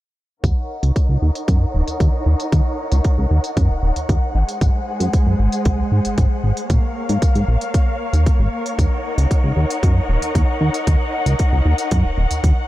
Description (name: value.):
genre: nu-disco, nu disco.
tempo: 115 BPM.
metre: 4/4.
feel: straight.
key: Eb dorian.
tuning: A4 = 440 Hz.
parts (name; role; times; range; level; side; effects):
warm studio string section; sustained chords; 0.4-12.7 s; Ab3 to Gb5; -24 LUFS; left 1 dB; sidechain pumping, low-pass filter.
chorused synth bass; bass; 0.4-12.5 s; Eb1 to Ab2; -17 LUFS; equal; sidechain pumping.
electronic hi-hat; drums; 0.4-12.5 s; none; -33 LUFS; equal; low-pass filter on hats.
electronic kick drum; drums; 0.4-12.5 s; none; -17 LUFS; equal; none.
room: light reverb.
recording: none.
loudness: -16 LUFS.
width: side -16 dB against mid.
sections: 0.4-12.7 A section.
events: filter sweep on analog synth bass 0.4-12.7; filter sweep on string section 0.4-12.7.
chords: 0.4 Ebm7; 4.4 Ab7; 6.7 Bbm; 8.8 Ebm7.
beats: | 0.44 0.96 1.48 2.00 | 2.53 3.05 3.57 4.09 | 4.61 5.13 5.66 6.18 | 6.70 7.22 7.74 8.27 | 8.79 9.31 9.83 10.35 | 10.87 11.39 11.92 12.44.